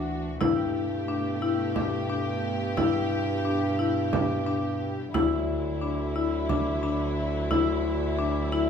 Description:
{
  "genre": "contemporary instrumental, chamber music in an uneven meter",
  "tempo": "177 BPM (eighths)",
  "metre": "7/8",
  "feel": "straight",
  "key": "unclear",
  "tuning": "A4 = 439 Hz",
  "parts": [
    { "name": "dark studio string section", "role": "sustained chords", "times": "0.0-8.7 s", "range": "B2 to G4", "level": "-32 LUFS", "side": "right 1 dB", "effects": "none" },
    { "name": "marimba with medium hard mallets", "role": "arpeggios", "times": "0.0-8.7 s", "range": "D4 to E4", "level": "-28 LUFS", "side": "left 6 dB", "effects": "none" },
    { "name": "dark bass clarinet", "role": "bass", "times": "0.0-8.7 s", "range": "D2 to G2", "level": "-30 LUFS", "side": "right 2 dB", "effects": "none" },
    { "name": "frame drum", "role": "percussion", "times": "0.4-8.0 s", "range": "none", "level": "-31 LUFS", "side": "right 6 dB", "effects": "none" }
  ],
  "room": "wet recital hall reverb, RT60 1.4 s",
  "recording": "minimal, uncompressed stereo recording",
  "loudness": "-24 LUFS",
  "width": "side -7 dB against mid",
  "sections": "0.0-8.7 A section",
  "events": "none",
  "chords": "0.4 Gadd9; 5.1 Dadd9"
}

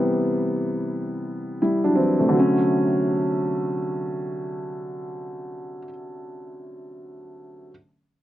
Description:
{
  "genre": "hip hop",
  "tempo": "free time",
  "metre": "none",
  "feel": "none",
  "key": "unclear",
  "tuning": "A4 = 440 Hz",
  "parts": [
    { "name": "dark grand piano", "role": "solo", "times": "0.0-7.7 s", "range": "C3 to E4", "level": "-22 LUFS", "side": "equal", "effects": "cassette tape, high-pass filter, low-pass filter" }
  ],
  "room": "light reverb",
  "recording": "dark, warm production",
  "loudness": "-21 LUFS",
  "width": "side -13 dB against mid",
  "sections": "0.0-2.3 A section; 2.3-5.2 B section",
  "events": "none",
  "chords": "0.0 Cmaj9#11; 2.3 Dmaj7"
}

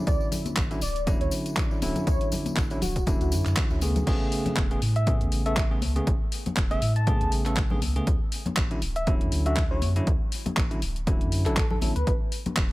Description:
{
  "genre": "deep house",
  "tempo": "120 BPM",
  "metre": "4/4",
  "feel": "swing 56% on 16ths",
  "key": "A major",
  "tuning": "A4 = 437 Hz",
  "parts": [
    { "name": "bell-like tine electric piano", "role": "stabs", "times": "0.0-11.9 s", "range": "C#3 to A4", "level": "-31 LUFS", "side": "equal", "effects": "vintage 12-bit sampler grit, sidechain pumping, dub echo" },
    { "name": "warm velvety synth lead", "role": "melody", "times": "0.1-3.3 s", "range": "F#4 to D5", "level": "-35 LUFS", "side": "equal", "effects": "chorus, dub echo" },
    { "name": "round analog bass", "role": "bass", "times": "0.1-12.7 s", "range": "D1 to A2", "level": "-28 LUFS", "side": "equal", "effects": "sidechain pumping" },
    { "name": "deep house drum kit", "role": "drums", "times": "0.1-12.7 s", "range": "crash cymbal, handclaps, hi-hat", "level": "-32 LUFS", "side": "equal", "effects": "overdrive" },
    { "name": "electronic kick drum", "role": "drums", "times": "0.1-12.7 s", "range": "none", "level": "-26 LUFS", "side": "equal", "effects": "none" },
    { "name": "tambourine", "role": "percussion", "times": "0.1-4.0 s", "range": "none", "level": "-41 LUFS", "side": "left 2 dB", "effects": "none" },
    { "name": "congas", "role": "percussion", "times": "0.3-12.5 s", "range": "none", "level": "-35 LUFS", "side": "left 3 dB", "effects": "none" },
    { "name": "soft struck synth lead", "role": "melody", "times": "5.0-12.1 s", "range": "A4 to A5", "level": "-32 LUFS", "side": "equal", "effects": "chorus, tape echo" }
  ],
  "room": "little or no reverb",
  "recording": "none",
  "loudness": "-23 LUFS",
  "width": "side -18 dB against mid",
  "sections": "0.0-4.1 A section; 4.1-12.7 B section",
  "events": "drop 4.1-12.7",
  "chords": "0.1 Dmaj9; 4.1 Amaj9; 8.1 Dmaj9; 12.1 A5"
}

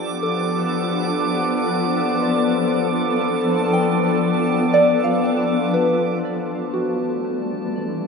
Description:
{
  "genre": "ambient",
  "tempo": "60 BPM",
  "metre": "4/4",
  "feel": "straight",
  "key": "unclear",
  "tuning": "A4 = 440 Hz",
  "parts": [
    { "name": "shimmering ambient pad", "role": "sustained chords", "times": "0.0-8.1 s", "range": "E3 to D5", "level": "-20 LUFS", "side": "left 2 dB", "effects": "chorus, built-in reverb" },
    { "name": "soft synth bell", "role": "arpeggios", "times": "0.0-8.1 s", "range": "F#4 to G5", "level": "-23 LUFS", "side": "right 1 dB", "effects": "chorus, phaser, tape echo" },
    { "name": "drifting glass-harmonics texture", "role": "texture", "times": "0.0-8.1 s", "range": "A5 to D6", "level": "-28 LUFS", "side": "right 7 dB", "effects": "chorus, built-in reverb" }
  ],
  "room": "wet cathedral reverb, RT60 5.8 s",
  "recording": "none",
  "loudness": "-18 LUFS",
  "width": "side -5 dB against mid",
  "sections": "0.0-6.2 A section; 6.2-8.1 B section",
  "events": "none",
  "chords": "0.0 Dm6; 6.2 A7sus4"
}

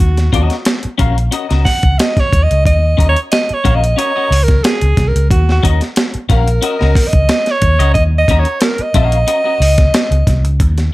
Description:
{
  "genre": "funk",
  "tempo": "91 BPM",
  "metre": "4/4",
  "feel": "straight",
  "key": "Eb minor",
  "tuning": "A4 = 440 Hz",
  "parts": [
    { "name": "breathy alto saxophone", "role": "melody", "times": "0.0-10.5 s", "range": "Gb4 to Gb5", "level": "-16 LUFS", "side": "right 2 dB", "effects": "plate reverb" },
    { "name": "vintage muted fingered electric bass", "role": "bass", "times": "0.0-10.9 s", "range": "Bb1 to Eb2", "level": "-13 LUFS", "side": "equal", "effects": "none" },
    { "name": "breakbeat sampler-style drum kit", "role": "drums", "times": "0.0-10.9 s", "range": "hi-hat, kick drum, snare drum", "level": "-14 LUFS", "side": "equal", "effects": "none" },
    { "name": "clean electric guitar", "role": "accompaniment", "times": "0.3-9.6 s", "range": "Db4 to F5", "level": "-20 LUFS", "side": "left 7 dB", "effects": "ensemble chorus, plate reverb" }
  ],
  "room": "light reverb, digital ambience",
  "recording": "none",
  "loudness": "-10 LUFS",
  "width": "side -18 dB against mid",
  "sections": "0.0-10.9 A section",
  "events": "alto saxophone solo 0.0-10.9",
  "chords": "0.0 Ebm7"
}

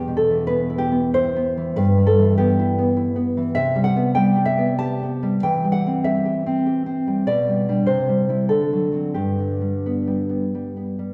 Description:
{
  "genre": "romantic piece for solo classical guitar",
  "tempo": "87-102 BPM",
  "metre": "3/4",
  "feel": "rubato",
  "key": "unclear",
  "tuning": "A4 = 440 Hz",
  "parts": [
    { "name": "nylon-string guitar", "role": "solo", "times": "0.0-11.1 s", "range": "E2 to A5", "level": "-20 LUFS", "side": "equal", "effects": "none" }
  ],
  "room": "wet scoring stage reverb, RT60 1.7 s",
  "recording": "recorded in a church or concert hall",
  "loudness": "-20 LUFS",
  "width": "mono",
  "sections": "0.0-11.1 A section",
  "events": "none",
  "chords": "0.0 E5; 1.8 Em/G; 3.6 C5; 5.4 C/E; 7.3 G/B; 7.9 C; 8.5 D7; 9.2 G"
}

